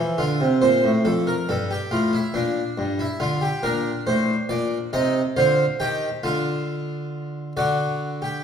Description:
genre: classical, baroque-style 3-part fugue for harpsichord.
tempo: 46 BPM (dotted quarters).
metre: 6/8.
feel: straight.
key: unclear.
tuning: A4 = 440 Hz.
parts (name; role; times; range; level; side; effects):
harpsichord; solo; 0.0-8.4 s; F2 to A5; -20 LUFS; equal; none.
room: wet recital hall reverb, RT60 1.5 s.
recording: heard from further back in the room.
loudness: -20 LUFS.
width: side -7 dB against mid.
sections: 0.0-8.4 A section.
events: none.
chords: 0.0 Dm; 1.1 Fmaj9; 2.4 Bb; 3.6 Bbmaj9; 4.9 Cmadd9; 6.3 D5; 7.6 D.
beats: | 1.06 2.35 | 3.64 4.94 | 6.25 7.57.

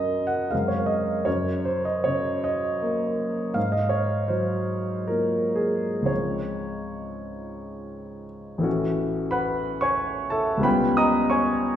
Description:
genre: classical, impressionist solo piano.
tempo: 57-92 BPM.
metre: 3/4.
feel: rubato.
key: Db major.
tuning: A4 = 440 Hz.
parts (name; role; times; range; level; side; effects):
clear baby grand piano; solo; 0.0-11.8 s; A1 to D#6; -23 LUFS; equal; none.
room: wet recital hall reverb, RT60 1.4 s.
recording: heard from further back in the room.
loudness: -22 LUFS.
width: side -10 dB against mid.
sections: 0.0-8.7 A section; 8.7-11.8 B section.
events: none.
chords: 0.0 Gb; 0.5 Bbm11/Gb; 1.3 Gb6; 3.6 Ab13; 6.1 Dbmaj9; 8.7 A69; 10.7 C#7#11.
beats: 0.52 | 1.27 2.06 2.83 | 3.56 4.29 5.10 | 6.09 7.00 7.84 | 8.66 9.33 9.99 | 10.65 11.32.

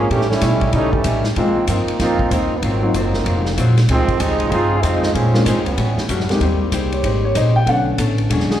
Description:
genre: jazz, big band swing.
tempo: 190 BPM.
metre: 4/4.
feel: swing 62% on 8ths.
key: Ab major.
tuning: A4 = 440 Hz.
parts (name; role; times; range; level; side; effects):
clear trombone section; second line; 0.0-6.1 s; Eb3 to Ab4; -20 LUFS; right 3 dB; slapback echo.
upright bass; bass; 0.0-8.5 s; E1 to C#3; -19 LUFS; equal; none.
archtop guitar, miked and amplified; accompaniment; 0.1-8.5 s; Ab2 to C#5; -25 LUFS; left 5 dB; slapback echo.
swinging big-band drum kit; drums; 0.1-8.6 s; hi-hat, kick drum, ride cymbal, snare drum; -24 LUFS; equal; none.
warm concert grand piano; accompaniment; 0.4-2.9, 5.3-8.6 s; D3 to G5; -20 LUFS; left 2 dB; slapback echo.
warm trombone section; sustained chords; 6.4-8.6 s; D3 to G4; -29 LUFS; right 1 dB; stereo widening.
room: light reverb.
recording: live gig heard through the venue's PA, club reverb.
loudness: -15 LUFS.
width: side -11 dB against mid.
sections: 0.0-6.4 A section; 6.4-8.6 B section.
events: trombone section solo 0.0-6.4; grand piano solo 6.4-8.6.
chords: 0.1 A7#11; 1.4 Ab69; 2.6 Ab13; 3.9 Dbmaj9#11; 5.1 Bbm9; 5.8 A13; 6.4 Abmaj7; 7.7 Bm9.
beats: | 0.10 0.42 0.73 1.05 | 1.36 1.68 2.00 2.31 | 2.62 2.94 3.26 3.57 | 3.89 4.20 4.52 4.83 | 5.15 5.46 5.78 6.09 | 6.41 6.72 7.04 7.35 | 7.67 7.98 8.30.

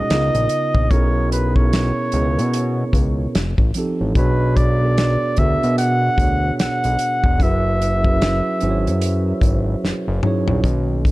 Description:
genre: R&B, neo-soul.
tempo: 74 BPM.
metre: 4/4.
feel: swing 60% on 16ths.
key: unclear.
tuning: A4 = 439 Hz.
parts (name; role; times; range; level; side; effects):
warm flugelhorn; melody; 0.0-9.8 s; B4 to F#5; -22 LUFS; right 1 dB; slapback echo.
mellow tine electric piano; accompaniment; 0.0-11.1 s; B2 to C#5; -22 LUFS; right 2 dB; none.
fat analog bass; bass; 0.0-11.1 s; E1 to B2; -20 LUFS; equal; none.
warm soul drum kit; drums; 0.1-11.1 s; hi-hat, kick drum, snare drum, toms; -19 LUFS; equal; none.
room: small room ambience.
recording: dark, warm production.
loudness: -16 LUFS.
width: side -19 dB against mid.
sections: 0.0-10.6 A section.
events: drum fill 9.8-10.6.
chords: 0.1 C#13; 0.9 E6/B; 3.3 F9; 4.2 E13/B (rootless); 7.4 F#13sus4.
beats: 0.10 | 0.91 1.72 2.53 3.34 | 4.15 4.96 5.77 6.58 | 7.39 8.21 9.02 9.83 | 10.64.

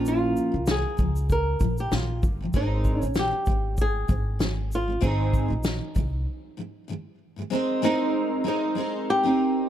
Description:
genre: acoustic pop.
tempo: 97 BPM.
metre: 4/4.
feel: swing 55% on 16ths.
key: Ab major.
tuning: A4 = 440 Hz.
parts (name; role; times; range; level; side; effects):
picked steel-string acoustic guitar; accompaniment; 0.0-9.7 s; Ab2 to Bb4; -27 LUFS; right 1 dB; double-tracked left and right.
upright bass; bass; 0.0-6.2 s; G1 to Db2; -27 LUFS; equal; none.
flamenco guitar; melody; 0.1-9.7 s; Eb4 to Bb4; -28 LUFS; equal; none.
natural country drum kit; drums; 0.1-6.1 s; kick drum, shaker, snare drum; -27 LUFS; equal; none.
room: small room ambience.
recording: dark, warm production.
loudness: -22 LUFS.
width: side -11 dB against mid.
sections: 0.0-7.5 A section; 7.5-9.7 B section.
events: break 6.3-7.5.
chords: 0.0 Bbm; 2.5 Abadd9.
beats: | 0.06 0.68 1.30 1.92 | 2.54 3.16 3.79 4.41 | 5.03 5.65 6.27 6.89 | 7.51 8.13 8.76 9.38.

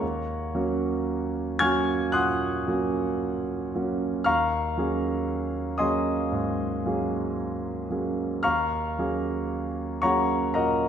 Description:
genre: classical, impressionist solo piano.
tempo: 57 BPM.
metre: 4/4.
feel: rubato.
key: unclear.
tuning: A4 = 440 Hz.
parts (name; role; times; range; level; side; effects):
clear concert grand piano; solo; 0.0-10.9 s; Eb2 to Ab6; -24 LUFS; right 1 dB; none.
room: wet scoring stage reverb, RT60 1.9 s.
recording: minimal, uncompressed stereo recording.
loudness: -24 LUFS.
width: side -8 dB against mid.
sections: 0.0-10.9 A section.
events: none.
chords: 0.0 Ebm11.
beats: | 0.02 1.08 2.16 3.22 | 4.27 5.28 6.32 7.38 | 8.44 9.52 10.58.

